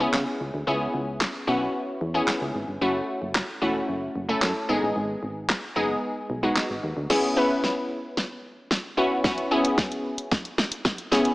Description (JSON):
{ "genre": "dance-pop", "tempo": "112 BPM", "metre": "4/4", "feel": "straight", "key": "C# minor", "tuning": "A4 = 441 Hz", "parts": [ { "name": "glassy wavetable pluck", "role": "accompaniment", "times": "0.0-11.3 s", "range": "G#3 to B4", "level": "-24 LUFS", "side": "equal", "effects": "chorus, sidechain pumping" }, { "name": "solid FM bass", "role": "bass", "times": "0.0-7.1 s", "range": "E1 to C#3", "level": "-31 LUFS", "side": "equal", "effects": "sidechain pumping" }, { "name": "pop drum kit", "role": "drums", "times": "0.1-11.3 s", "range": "crash cymbal, handclaps, hi-hat, kick drum, snare drum", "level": "-26 LUFS", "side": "equal", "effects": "none" } ], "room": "moderate lush hall reverb, RT60 1.9 s", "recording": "high-pass filter, small speaker sound", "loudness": "-23 LUFS", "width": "side -20 dB against mid", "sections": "0.0-7.1 A section; 7.1-11.3 B section", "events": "build-up 7.1-11.3; drum fill 7.1-11.3", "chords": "0.0 C#m7; 2.8 F#m7; 4.7 G#m; 7.1 C#m7" }